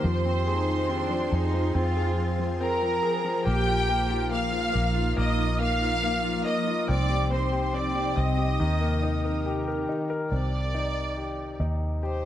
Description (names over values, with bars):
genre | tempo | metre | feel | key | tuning
pop ballad | 70 BPM | 4/4 | straight | unclear | A4 = 440 Hz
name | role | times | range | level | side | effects
warm studio violin section | melody | 0.0-12.3 s | G4 to F6 | -29 LUFS | right 1 dB | none
clear concert grand piano | accompaniment | 0.0-12.3 s | C3 to Bb4 | -30 LUFS | left 3 dB | none
ethereal airy pad | sustained chords | 0.0-10.3 s | C3 to C5 | -34 LUFS | right 1 dB | ensemble chorus, built-in reverb
vintage muted fingered electric bass | bass | 0.0-12.3 s | Bb1 to F2 | -28 LUFS | equal | none
dark studio cello section | second line | 0.5-2.4 s | D4 to F4 | -32 LUFS | right 2 dB | analog delay
room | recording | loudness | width
moderate spring reverb, RT60 1.6 s, studio reverb | none | -24 LUFS | side -11 dB against mid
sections
0.0-10.3 A section; 10.3-12.3 B section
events
none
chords
0.0 Fm; 3.5 Bbsus4; 6.9 Cmadd9; 8.6 Eb; 10.3 Cm